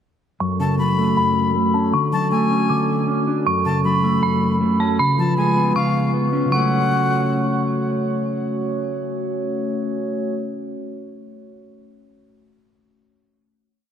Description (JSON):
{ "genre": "hip hop, trap", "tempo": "157 BPM", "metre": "4/4", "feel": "half-time", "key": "F# harmonic minor", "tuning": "A4 = 441 Hz", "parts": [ { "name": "dark detuned synth bell", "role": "melody", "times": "0.4-7.6 s", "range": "A5 to D6", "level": "-23 LUFS", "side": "equal", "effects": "chorus, phaser, low-pass filter, tape echo" }, { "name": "mellow electric guitar", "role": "accompaniment", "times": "0.4-10.9 s", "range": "F#2 to D4", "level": "-20 LUFS", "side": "equal", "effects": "spring reverb, low-pass filter" }, { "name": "glass harmonica", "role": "sustained chords", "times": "0.4-10.3 s", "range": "G#3 to C#5", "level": "-26 LUFS", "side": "left 1 dB", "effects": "low-pass filter" }, { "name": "breathy bright jazz flute", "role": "second line", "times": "0.6-7.6 s", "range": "E#5 to B5", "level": "-26 LUFS", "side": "left 2 dB", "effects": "tape echo" } ], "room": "moderate lush hall reverb, RT60 2.7 s", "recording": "none", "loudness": "-17 LUFS", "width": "side -8 dB against mid", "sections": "0.4-6.5 breakdown; 6.5-9.6 final chord", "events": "filter sweep 0.4-6.5", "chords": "0.4 F#m; 1.9 Dmaj7; 3.5 F#m; 5.0 C#7; 6.5 F#m" }